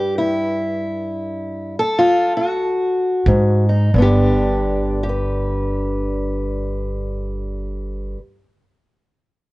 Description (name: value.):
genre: acoustic country blues, solo or duo.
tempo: 88-104 BPM.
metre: 4/4.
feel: swing 62% on 8ths.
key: G major.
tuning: A4 = 438 Hz.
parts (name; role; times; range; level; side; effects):
fingerpicked steel-string acoustic guitar; melody; 0.0-8.2 s; G2 to B4; -19 LUFS; equal; plate reverb.
upright bass; bass; 3.3-8.1 s; G1 to Ab2; -19 LUFS; right 1 dB; tube saturation.
kick drum; drums; 3.3-3.5 s; none; -20 LUFS; right 1 dB; none.
room: light reverb.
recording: worn, warbling old tape, cassette tape, warbly pitch drift, nothing above 10.9 kHz.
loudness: -17 LUFS.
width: side -20 dB against mid.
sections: 0.0-3.9 A section; 3.9-6.7 B section.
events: slowing down 0.0-3.9; stop 0.0-3.3.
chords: 0.0 Gmaj7sus2; 3.3 Ab5; 3.9 G.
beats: 0.19 0.78 | 1.37 1.99 2.61 3.26 | 3.93 4.62 5.30 5.99.